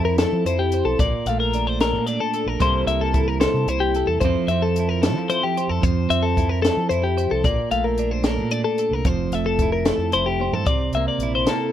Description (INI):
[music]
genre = math rock and midwest emo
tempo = 74 BPM (dotted quarters)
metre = 6/8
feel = straight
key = F major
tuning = A4 = 440 Hz
[part]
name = twelve-string electric guitar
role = accompaniment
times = 0.0-11.7 s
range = F2 to C5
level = -25 LUFS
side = right 8 dB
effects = none
[part]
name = twelve-string electric guitar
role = arpeggios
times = 0.0-11.7 s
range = G4 to F5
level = -22 LUFS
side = left 5 dB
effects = none
[part]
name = overdriven fingered electric bass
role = bass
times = 0.0-11.4 s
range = F1 to F3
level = -25 LUFS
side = equal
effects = none
[part]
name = compact cocktail drum kit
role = drums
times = 0.2-11.6 s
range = hi-hat, kick drum, snare drum, toms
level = -24 LUFS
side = equal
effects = none
[sound]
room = small room reverb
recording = rough home demo mix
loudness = -18 LUFS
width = side -11 dB against mid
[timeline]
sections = 0.0-10.7 A section; 10.7-11.7 B section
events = drum fill 10.4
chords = 0.0 Fmaj7; 1.0 Bbmaj7; 2.6 C6; 4.2 Fmaj7; 7.4 Bbmaj7; 9.1 Fmaj7; 10.7 C13